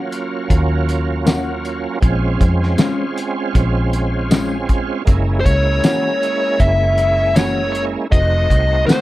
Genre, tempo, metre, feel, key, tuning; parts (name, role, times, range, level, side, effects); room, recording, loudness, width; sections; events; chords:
straight-eighth soul blues; 79 BPM; 4/4; swing 56% on 16ths; Bb minor; A4 = 439 Hz
bright tonewheel organ; accompaniment; 0.0-9.0 s; Gb3 to Gb4; -22 LUFS; right 3 dB; overdrive, chorus vibrato, slow rotary speaker
cloth-damped thuddy drum kit; drums; 0.1-9.0 s; hi-hat, kick drum, snare drum, tambourine; -16 LUFS; equal
vintage muted fingered electric bass; bass; 0.5-8.8 s; F1 to F2; -18 LUFS; equal
mellow electric guitar; stabs; 1.3-9.0 s; Eb3 to Gb4; -21 LUFS; left 4 dB
dark smooth lead guitar; melody; 5.4-9.0 s; C5 to Fb5; -17 LUFS; left 1 dB; overdrive
light reverb; -14 LUFS; side -16 dB against mid
0.0-9.0 A section
0.0 Ebm7; 2.0 Bbm7; 5.1 Gb7; 8.1 F7b9